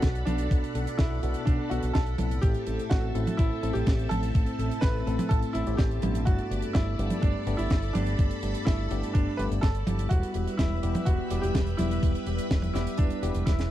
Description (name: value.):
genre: italo disco.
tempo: 125 BPM.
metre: 4/4.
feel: straight.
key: G major.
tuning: A4 = 440 Hz.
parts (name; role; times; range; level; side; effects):
bright baby grand piano; melody; 0.0-13.7 s; D4 to B4; -34 LUFS; right 2 dB; tape echo.
string machine, full ensemble; sustained chords; 0.0-13.7 s; G3 to B5; -36 LUFS; equal; ensemble chorus.
tine electric piano; stabs; 0.0-13.5 s; G2 to A4; -34 LUFS; left 3 dB; medium stereo tremolo, low-pass filter.
fingered electric bass with an envelope filter; bass; 0.0-13.7 s; E1 to B1; -30 LUFS; equal; none.
electronic kick drum; drums; 0.0-13.6 s; none; -25 LUFS; equal; overdrive.
tight funk drum kit; drums; 0.0-13.7 s; hi-hat, snare drum, toms; -33 LUFS; right 2 dB; none.
room: little or no reverb.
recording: dry, close 1970s-style studio recording.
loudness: -24 LUFS.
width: side -13 dB against mid.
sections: 0.0-13.7 A section.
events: filter sweep on tine electric piano 0.0-13.7; drum fill 13.5.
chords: 0.0 Bm7; 2.4 Am; 6.3 Gadd9; 10.1 Em.